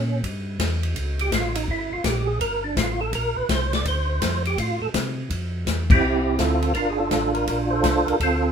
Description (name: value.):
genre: soul jazz organ trio.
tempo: 166 BPM.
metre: 4/4.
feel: swing 65% on 8ths.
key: D minor.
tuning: A4 = 440 Hz.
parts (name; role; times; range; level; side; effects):
percussive tonewheel organ; melody; 0.0-8.5 s; C4 to D5; -23 LUFS; right 2 dB; chorus vibrato, fast rotary speaker.
mellow tonewheel organ; bass; 0.0-8.5 s; G1 to C3; -26 LUFS; equal; slow rotary speaker.
swinging big-band drum kit; drums; 0.2-8.3 s; crash cymbal, hi-hat, kick drum, ride cymbal, snare drum; -26 LUFS; left 2 dB; none.
room: light reverb.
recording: minimal, uncompressed stereo recording.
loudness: -20 LUFS.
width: side -7 dB against mid.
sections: 0.0-5.3 A section; 5.3-8.5 B section.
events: tonewheel organ solo 0.0-5.3; band accent 5.8.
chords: 0.0 A7b9; 2.4 Gmadd9; 3.9 Dm7; 5.3 Dm9; 6.7 Gm9.